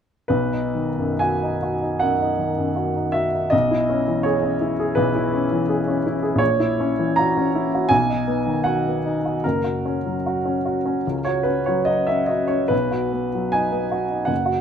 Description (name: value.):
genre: classical, romantic character piece for solo piano.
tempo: 63-86 BPM.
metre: 4/4.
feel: rubato.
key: B major.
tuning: A4 = 439 Hz.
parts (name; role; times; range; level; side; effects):
warm upright piano; solo; 0.3-14.6 s; F#1 to A#5; -19 LUFS; equal; none.
room: moderate recital hall reverb, RT60 1.4 s.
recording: close, detailed microphones.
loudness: -19 LUFS.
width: side -8 dB against mid.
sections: 0.3-14.6 A section.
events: none.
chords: 0.3 B; 3.5 C#m7/B; 6.4 F#7/A#; 7.9 B; 9.4 F#; 12.7 B.